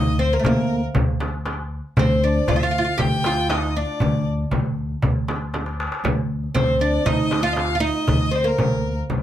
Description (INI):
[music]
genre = Arabic maqam ensemble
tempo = 118 BPM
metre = 4/4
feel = straight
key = D maqam kurd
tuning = A4 = 440 Hz
[part]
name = oud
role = melody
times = 0.0-8.9 s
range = A3 to G4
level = -22 LUFS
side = right 2 dB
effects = plate reverb
[part]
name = rich violin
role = second line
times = 0.0-9.0 s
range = Bb4 to G5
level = -27 LUFS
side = left 4 dB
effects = none
[part]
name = upright bass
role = bass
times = 0.0-9.2 s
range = D2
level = -24 LUFS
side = left 1 dB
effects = none
[part]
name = darbuka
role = percussion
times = 0.1-9.2 s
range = none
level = -26 LUFS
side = left 1 dB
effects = none
[part]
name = frame drum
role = percussion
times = 0.4-9.2 s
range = none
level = -25 LUFS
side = right 2 dB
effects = none
[sound]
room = light reverb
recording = none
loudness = -19 LUFS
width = side -11 dB against mid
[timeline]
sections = 0.0-9.2 A section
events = drum fill 5.5-6.0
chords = none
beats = 0.44 0.95 1.46 | 1.97 2.48 2.99 3.50 | 4.01 4.52 5.03 5.54 | 6.04 6.55 7.06 7.57 | 8.08 8.59 9.09